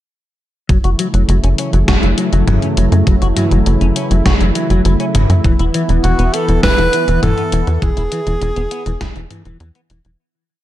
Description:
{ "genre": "synthwave", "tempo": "101 BPM", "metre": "4/4", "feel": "straight", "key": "F# minor", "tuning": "A4 = 440 Hz", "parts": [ { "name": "warm analog pad", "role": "sustained chords", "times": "0.7-10.2 s", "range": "C#3 to E4", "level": "-20 LUFS", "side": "right 1 dB", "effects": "chorus, vintage 12-bit sampler grit, sidechain pumping" }, { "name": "semi-hollow electric guitar", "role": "riff", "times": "0.7-10.1 s", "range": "E3 to F#4", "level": "-22 LUFS", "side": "left 3 dB", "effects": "analog chorus, low-pass filter, tape echo" }, { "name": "tight sequencer bass", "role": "bass", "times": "0.7-10.2 s", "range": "E1 to F#2", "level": "-14 LUFS", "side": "equal", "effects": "sidechain pumping" }, { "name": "electronic kick drum", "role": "drums", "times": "0.7-9.1 s", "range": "none", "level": "-16 LUFS", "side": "equal", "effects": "none" }, { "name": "gated 80s digital drum machine", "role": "drums", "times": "0.7-10.2 s", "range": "hi-hat, snare drum, toms", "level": "-20 LUFS", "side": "equal", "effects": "gated reverb, gated reverb snare" }, { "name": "mellow tenor saxophone", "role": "melody", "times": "6.0-9.6 s", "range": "F#4 to B4", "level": "-18 LUFS", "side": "right 1 dB", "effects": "digital delay" } ], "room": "light reverb, digital ambience", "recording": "dark, warm production", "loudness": "-12 LUFS", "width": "side -13 dB against mid", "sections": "0.7-10.2 verse", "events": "filter sweep on clean electric guitar 0.7-10.2; fade-out 7.0-10.2", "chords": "0.7 F#m7; 5.4 E" }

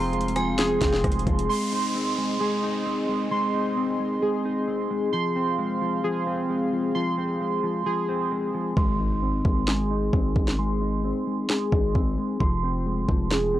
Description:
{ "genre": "hip hop, trap", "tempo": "132 BPM", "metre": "4/4", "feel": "half-time", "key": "Ab major", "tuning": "A4 = 438 Hz", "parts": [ { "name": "metallic FM bell", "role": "second line", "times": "0.0-1.0 s", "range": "Ab5 to Bb5", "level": "-33 LUFS", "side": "right 1 dB", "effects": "chorus, analog delay" }, { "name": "mellow electric guitar", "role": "accompaniment", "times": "0.0-13.6 s", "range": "F3 to Eb4", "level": "-28 LUFS", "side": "left 1 dB", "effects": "analog chorus, low-pass filter" }, { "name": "warm analog pad", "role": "sustained chords", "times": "0.0-8.7 s", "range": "C4 to F5", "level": "-31 LUFS", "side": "left 2 dB", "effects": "chorus" }, { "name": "warbly lo-fi synth keys", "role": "arpeggios", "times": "0.0-13.6 s", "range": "Ab4 to C6", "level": "-28 LUFS", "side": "right 2 dB", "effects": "chorus, phaser, low-pass filter, analog delay" }, { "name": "distorted 808-style bass", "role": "bass", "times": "0.0-1.5, 8.8-13.6 s", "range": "F1 to Ab1", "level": "-27 LUFS", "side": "equal", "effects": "distortion, transformer saturation" }, { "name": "trap drum kit", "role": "drums", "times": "0.1-1.5, 8.8-13.4 s", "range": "hi-hat, kick drum, rim click, snare drum", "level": "-25 LUFS", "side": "equal", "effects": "none" }, { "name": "downlifter and impact", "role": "sound effects", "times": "1.5-5.1, 8.8-10.6 s", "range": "none", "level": "-36 LUFS", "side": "equal", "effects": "none" } ], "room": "light reverb", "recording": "dry, gritty hardware recording, cassette tape", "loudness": "-22 LUFS", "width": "side -13 dB against mid", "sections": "0.0-1.5 A section; 1.5-8.8 B section; 8.8-13.6 C section", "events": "hi-hats muted 8.8-13.6; impact 8.8-10.6; filter sweep 8.8-13.6", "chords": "0.0 Fm; 1.5 Ab; 5.1 Fm; 8.8 Ab; 12.4 Fm" }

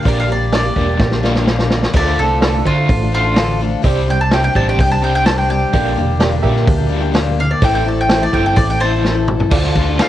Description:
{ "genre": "folk rock and heartland rock", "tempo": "127 BPM", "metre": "4/4", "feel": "straight", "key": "D minor", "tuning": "A4 = 440 Hz", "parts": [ { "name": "bowl-back mandolin", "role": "melody", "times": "0.0-10.1 s", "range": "F4 to A5", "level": "-19 LUFS", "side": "right 1 dB", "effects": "cassette tape, plate reverb" }, { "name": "picked steel-string acoustic guitar", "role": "accompaniment", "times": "0.0-10.1 s", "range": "A2 to A4", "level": "-22 LUFS", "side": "left 9 dB", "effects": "cassette tape, plate reverb" }, { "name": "crunchy overdriven guitar", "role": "riff", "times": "0.0-10.1 s", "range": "A2 to F4", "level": "-23 LUFS", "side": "equal", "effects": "tremolo, cassette tape" }, { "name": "reed electric piano", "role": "accompaniment", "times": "0.1-10.1 s", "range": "E4 to E5", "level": "-24 LUFS", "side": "right 8 dB", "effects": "fast tremolo, cassette tape, plate reverb" }, { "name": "picked electric bass", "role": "bass", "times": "0.1-10.0 s", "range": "E1 to D3", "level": "-18 LUFS", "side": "equal", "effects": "none" }, { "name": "vintage drum kit", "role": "drums", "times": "0.1-10.1 s", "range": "crash cymbal, hi-hat, kick drum, ride cymbal, snare drum, toms", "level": "-17 LUFS", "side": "equal", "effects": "cassette tape" } ], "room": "light reverb", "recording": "home recording on cassette", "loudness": "-12 LUFS", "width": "side -13 dB against mid", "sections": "0.0-9.5 A section", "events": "mandolin solo 0.0-9.5; drum fill 1.0-1.9, 9.0-9.5", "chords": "0.0 Gm; 1.9 Dm; 3.8 Csus2; 5.7 Gm; 7.6 Am; 9.5 Dm" }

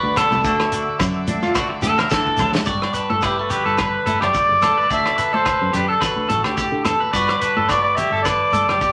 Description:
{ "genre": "highlife guitar band", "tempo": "108 BPM", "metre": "4/4", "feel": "swing 55% on 16ths", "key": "G major", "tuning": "A4 = 440 Hz", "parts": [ { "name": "semi-hollow electric guitar", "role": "accompaniment", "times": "0.0-8.9 s", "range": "G2 to A4", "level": "-29 LUFS", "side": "equal", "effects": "none" }, { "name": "combo organ", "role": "sustained chords", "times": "0.0-2.6 s", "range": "D5 to D6", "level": "-32 LUFS", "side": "equal", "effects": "none" }, { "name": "electric guitar at the edge of break-up", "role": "arpeggios", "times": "0.0-8.9 s", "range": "F4 to D5", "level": "-23 LUFS", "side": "equal", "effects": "spring reverb" }, { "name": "fingered electric bass", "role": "bass", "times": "0.0-8.8 s", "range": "F#1 to D3", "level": "-29 LUFS", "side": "equal", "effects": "none" }, { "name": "warm soul drum kit", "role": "drums", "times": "0.2-8.9 s", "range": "hi-hat, kick drum, rim click, snare drum", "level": "-29 LUFS", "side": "equal", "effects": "none" }, { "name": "agogo bells", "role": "percussion", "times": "0.2-8.8 s", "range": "none", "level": "-32 LUFS", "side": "equal", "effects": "none" }, { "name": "congas", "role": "percussion", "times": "0.2-8.7 s", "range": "none", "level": "-32 LUFS", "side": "equal", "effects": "none" }, { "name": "shekere", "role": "percussion", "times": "0.2-8.9 s", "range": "none", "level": "-35 LUFS", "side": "equal", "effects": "none" }, { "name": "warm trumpet", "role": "melody", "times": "3.2-8.9 s", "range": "G4 to E5", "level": "-22 LUFS", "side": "equal", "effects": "none" } ], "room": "wet studio reverb, RT60 0.8 s", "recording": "none", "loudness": "-19 LUFS", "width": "mono", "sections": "0.0-2.7 A section; 2.7-8.9 B section", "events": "clean electric guitar solo 0.0-2.7; drum fill 2.1-2.7", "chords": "0.4 Dadd9; 2.7 Gmaj7; 4.9 D; 7.1 Gmaj7" }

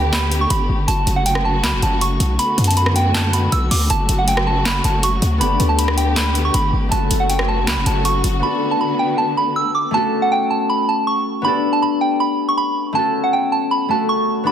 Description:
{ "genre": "hip hop, trap", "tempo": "159 BPM", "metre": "4/4", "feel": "half-time", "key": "F# phrygian", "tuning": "A4 = 440 Hz", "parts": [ { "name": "soft synth bell", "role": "melody", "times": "0.0-14.5 s", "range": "F#5 to E6", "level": "-19 LUFS", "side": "right 2 dB", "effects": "chorus" }, { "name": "dark symphonic string section", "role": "sustained chords", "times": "0.0-9.9 s", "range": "C#3 to G4", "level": "-24 LUFS", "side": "equal", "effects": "none" }, { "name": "hard-hitting 808-style bass", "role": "bass", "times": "0.0-8.4 s", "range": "F#1 to F#2", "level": "-18 LUFS", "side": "equal", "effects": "none" }, { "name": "booming analog drum machine", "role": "drums", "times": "0.1-8.3 s", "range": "handclaps, hi-hat, rim click, snare drum", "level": "-23 LUFS", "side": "equal", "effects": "none" }, { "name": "concert harp", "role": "accompaniment", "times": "5.4-14.5 s", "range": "A3 to A4", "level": "-21 LUFS", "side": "left 4 dB", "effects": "none" } ], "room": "little or no reverb", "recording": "dense, heavily limited modern master", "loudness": "-15 LUFS", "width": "side -9 dB against mid", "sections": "0.0-9.9 A section; 9.9-14.5 B section", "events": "break 0.0-5.4", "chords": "0.0 Gadd9; 0.9 F#m; 2.4 Bm7; 3.9 F#m; 5.4 Gadd9; 6.9 F#m; 8.4 Bm7; 9.9 F#m; 11.4 Gadd9; 13.0 F#m" }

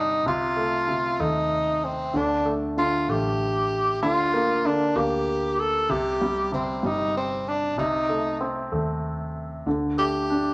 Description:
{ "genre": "pop", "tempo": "64 BPM (dotted quarters)", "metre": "6/8", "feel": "straight", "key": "unclear", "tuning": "A4 = 440 Hz", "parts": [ { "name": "clear tenor saxophone", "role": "melody", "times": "0.0-10.5 s", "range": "C4 to A4", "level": "-26 LUFS", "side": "equal", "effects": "none" }, { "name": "clear baby grand piano", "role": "accompaniment", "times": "0.0-10.5 s", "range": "C3 to D4", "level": "-30 LUFS", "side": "equal", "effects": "none" }, { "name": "vintage muted fingered electric bass", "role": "bass", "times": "0.0-10.5 s", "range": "G1 to Eb2", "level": "-36 LUFS", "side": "equal", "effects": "none" } ], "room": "wet large studio reverb, RT60 1.1 s", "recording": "none", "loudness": "-25 LUFS", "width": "mono", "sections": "0.0-10.5 A section", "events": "none", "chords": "0.3 Adim/C; 2.1 Dsus4; 4.0 Gm7/D; 5.9 C5; 7.8 Adim/C; 9.7 Dsus4" }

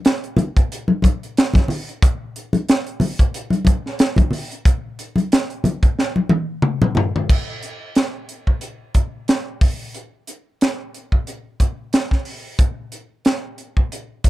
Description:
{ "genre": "jazz", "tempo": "91 BPM", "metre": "4/4", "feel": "swing 56% on 16ths", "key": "none", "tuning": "none", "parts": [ { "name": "crisp fusion drum kit", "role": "drums", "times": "0.0-14.3 s", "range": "crash cymbal, hi-hat, kick drum, snare drum, toms", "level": "-17 LUFS", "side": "equal", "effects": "none" }, { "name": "congas", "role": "percussion", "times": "0.4-7.1 s", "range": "none", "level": "-18 LUFS", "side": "left 2 dB", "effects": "none" } ], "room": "little or no reverb", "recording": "none", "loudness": "-17 LUFS", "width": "side -16 dB against mid", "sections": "0.0-7.3 A section; 7.3-14.3 B section", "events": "drum fill 6.0-7.3", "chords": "none" }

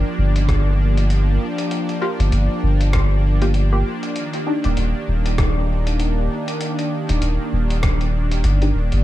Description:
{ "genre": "ambient dub", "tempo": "98 BPM", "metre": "4/4", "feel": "swing 58% on 16ths", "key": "unclear", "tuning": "A4 = 439 Hz", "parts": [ { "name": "warm analog pad", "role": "sustained chords", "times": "0.0-9.0 s", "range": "Eb3 to D5", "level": "-24 LUFS", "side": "right 1 dB", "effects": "chorus" }, { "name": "soft dub sub bass", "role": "bass", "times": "0.0-9.0 s", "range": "Eb1 to G1", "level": "-17 LUFS", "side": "equal", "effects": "none" }, { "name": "lo-fi sampler-style drum kit", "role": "drums", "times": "0.4-9.0 s", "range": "hi-hat, rim click", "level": "-30 LUFS", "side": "equal", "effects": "none" }, { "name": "electronic kick drum", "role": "drums", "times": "0.5-8.0 s", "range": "none", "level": "-21 LUFS", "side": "equal", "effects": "none" }, { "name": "filtered dub chord stab", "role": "stabs", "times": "2.0-4.7, 8.6-8.8 s", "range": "Bb3 to G4", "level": "-28 LUFS", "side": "left 1 dB", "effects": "lush chorus, dub echo" } ], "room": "little or no reverb", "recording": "none", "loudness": "-17 LUFS", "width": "side -14 dB against mid", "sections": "0.0-9.0 A section", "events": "none", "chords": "0.0 Gm7; 4.2 Ebmaj7" }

